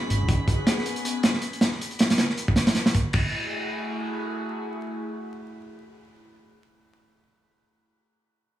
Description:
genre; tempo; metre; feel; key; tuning
drum and bass, jungle; 158 BPM; 4/4; swing 55% on 16ths; F# minor; A4 = 441 Hz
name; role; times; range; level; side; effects
airy breathy pad; sustained chords; 0.0-6.4 s; A3 to G#4; -33 LUFS; left 1 dB; chorus, phaser
drifting glass-harmonics texture; texture; 0.0-3.3 s; B5 to B6; -40 LUFS; right 1 dB; chorus, built-in reverb
crunchy breakbeat drum kit; drums; 0.1-3.2 s; crash cymbal, hi-hat, kick drum, snare drum; -22 LUFS; right 1 dB; none
room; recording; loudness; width
light reverb, studio reverb; vinyl crackle, small room ambience; -22 LUFS; side -12 dB against mid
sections
0.0-3.3 A section; 3.3-6.4 B section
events
drop 0.0-3.3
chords
0.3 C#7sus4; 3.1 F#m9

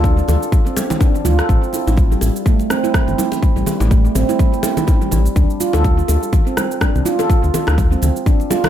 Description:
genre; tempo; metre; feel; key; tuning
afro house; 124 BPM; 4/4; swing 57% on 16ths; unclear; A4 = 440 Hz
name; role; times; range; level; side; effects
handpan; arpeggios; 0.0-8.7 s; G3 to A4; -19 LUFS; right 2 dB; sidechain pumping, tape echo
round analog bass; bass; 0.0-8.1 s; G1 to D2; -16 LUFS; equal; sidechain pumping
electronic cabasa and rim click; drums; 0.0-8.7 s; none; -25 LUFS; right 1 dB; studio reverb
electronic kick drum; drums; 0.0-8.4 s; none; -14 LUFS; equal; studio reverb
congas; percussion; 0.0-8.7 s; none; -26 LUFS; right 3 dB; analog delay
bongos; percussion; 0.3-8.7 s; none; -27 LUFS; left 3 dB; analog delay
room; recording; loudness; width
light reverb, studio ambience; echo-heavy mix; -13 LUFS; side -11 dB against mid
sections
0.0-8.7 A section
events
none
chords
0.0 D5; 1.5 Am; 5.4 Dm

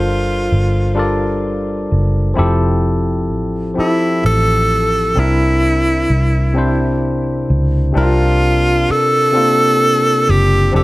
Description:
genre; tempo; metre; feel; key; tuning
slow six-eight R&B; 43 BPM (dotted quarters); 6/8; straight; unclear; A4 = 440 Hz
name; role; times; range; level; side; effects
breathy tenor saxophone; melody; 0.0-10.8 s; E4 to A4; -15 LUFS; equal; none
barky tine electric piano; accompaniment; 0.0-10.8 s; C3 to D5; -18 LUFS; left 1 dB; overdrive
vintage muted fingered electric bass; bass; 0.0-10.8 s; F1 to Db2; -16 LUFS; equal; none
room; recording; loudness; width
light reverb; none; -12 LUFS; side -19 dB against mid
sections
0.0-7.9 A section; 7.9-10.8 B section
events
none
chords
0.0 Gm11; 2.4 Fmaj7; 5.2 C9; 7.9 C9sus4

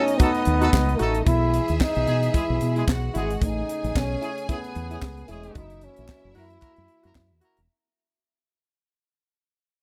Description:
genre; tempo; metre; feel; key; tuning
disco; 112 BPM; 4/4; swing 56% on 16ths; unclear; A4 = 440 Hz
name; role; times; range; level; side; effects
breathy trombone; melody; 0.0-7.4 s; G#3 to E4; -29 LUFS; equal; none
clear studio string section; second line; 0.0-7.6 s; D#4 to G#5; -38 LUFS; equal; none
dark French horn section; sustained chords; 0.0-7.7 s; B2 to G#4; -36 LUFS; equal; none
clear horn section; stabs; 0.0-7.6 s; G#3 to A#4; -32 LUFS; equal; none
tight funk drum kit; drums; 0.1-7.7 s; handclaps, hi-hat, kick drum, snare drum; -26 LUFS; equal; none
fingered electric bass; bass; 0.5-7.7 s; E1 to B2; -28 LUFS; equal; none
room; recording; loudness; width
light reverb; none; -23 LUFS; mono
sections
0.0-7.7 A section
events
fade-out 0.0-7.7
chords
0.0 B7; 1.3 Emaj7/B; 3.4 Amaj7; 5.5 F#7

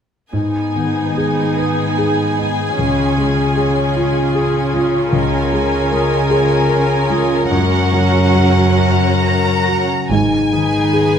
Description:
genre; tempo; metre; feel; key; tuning
cinematic; 43-52 BPM (dotted quarters); 6/8; rubato; G# dorian; A4 = 439 Hz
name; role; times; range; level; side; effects
rich studio violin section; second line; 0.3-11.2 s; G#4 to G#5; -20 LUFS; left 1 dB; none
rich studio viola section; accompaniment; 0.3-11.2 s; G#3 to F#4; -22 LUFS; right 1 dB; none
warm concert grand piano; accompaniment; 0.3-11.2 s; C#2 to B4; -19 LUFS; equal; none
concert harp; arpeggios; 0.3-11.2 s; F#2 to A#4; -21 LUFS; left 6 dB; none
rich studio cello section; bass; 0.3-11.2 s; F#2 to C#3; -19 LUFS; right 2 dB; none
clear studio violin section; melody; 8.8-11.2 s; G#5 to A#5; -20 LUFS; left 1 dB; none
rich studio double bass section; bass; 10.1-11.2 s; G#1; -23 LUFS; right 4 dB; none
room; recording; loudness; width
light reverb; close, detailed microphones; -13 LUFS; side -8 dB against mid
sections
0.3-10.1 A section; 10.1-11.2 B section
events
none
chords
0.3 G#m; 2.8 C#; 5.1 A#m7/C#; 7.5 F#; 10.1 G#m

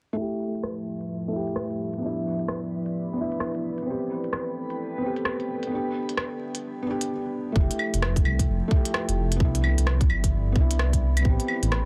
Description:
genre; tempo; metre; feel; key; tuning
future garage; 130 BPM; 4/4; swing 62% on 16ths; unclear; A4 = 440 Hz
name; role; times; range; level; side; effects
felt-muted upright piano; accompaniment; 0.1-11.9 s; A3 to G4; -32 LUFS; equal; vintage 12-bit sampler grit, sidechain pumping, tape echo
deep dark ambient pad; sustained chords; 0.7-11.9 s; F3 to B5; -37 LUFS; equal; chorus, built-in reverb, sidechain pumping
backwards swelling texture; texture; 1.0-7.1 s; B4; -44 LUFS; equal; built-in reverb
organic electronic drum kit; drums; 0.6-11.8 s; claves, hi-hat, rim click; -32 LUFS; equal; soft clipping on snare
dark detuned saw bass; bass; 7.6-11.9 s; F1 to C2; -26 LUFS; equal; sidechain pumping
electronic kick drum; drums; 7.6-11.4 s; none; -25 LUFS; equal; none
room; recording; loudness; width
little or no reverb; dense, heavily limited modern master, vinyl crackle, low-pass filter; -26 LUFS; mono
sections
0.2-7.6 A section; 7.6-11.9 B section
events
filter sweep 0.2-7.6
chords
0.2 Fmaj9; 2.0 Bmadd11; 3.9 Am9; 5.7 Em7; 7.6 Fmaj9; 9.4 Cmaj9; 11.2 Am9

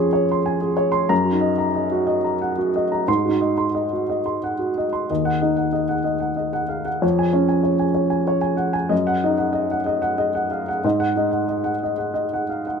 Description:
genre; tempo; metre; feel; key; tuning
neoclassical minimalist piano; 93 BPM; 3/4; rubato; Eb dorian; A4 = 439 Hz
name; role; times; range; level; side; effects
warm upright piano; solo; 0.0-12.8 s; Eb2 to C6; -19 LUFS; equal; none
room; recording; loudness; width
little or no reverb; close, detailed microphones; -19 LUFS; side -6 dB against mid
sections
0.0-5.1 A section; 5.1-12.8 B section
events
none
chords
0.0 Dbmaj7/F; 1.1 Gb6; 3.1 Ab7; 5.1 Ebm; 7.0 Db/F; 8.9 Ebmadd9/Gb; 10.8 Ab5

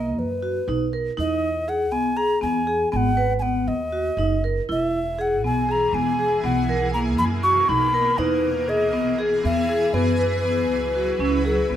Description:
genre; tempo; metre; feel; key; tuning
contemporary instrumental, chamber music in an uneven meter; 239 BPM (eighths); 7/8; straight; unclear; A4 = 444 Hz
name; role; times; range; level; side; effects
breathy alto ocarina; melody; 0.0-11.8 s; B4 to C#6; -24 LUFS; left 1 dB; none
vibraphone with medium mallets; arpeggios; 0.0-11.8 s; A#3 to B4; -23 LUFS; left 1 dB; none
upright bass; bass; 0.0-11.8 s; E1 to F#2; -27 LUFS; right 2 dB; none
room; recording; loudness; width
moderate recital hall reverb, RT60 1.4 s; none; -19 LUFS; side -10 dB against mid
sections
0.0-11.7 A section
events
none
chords
0.0 Bmaj7(no3); 1.2 Emaj7; 2.9 G#m7; 4.7 E; 6.4 Bmaj7(no3); 8.2 Emaj7; 10.0 F#7sus4

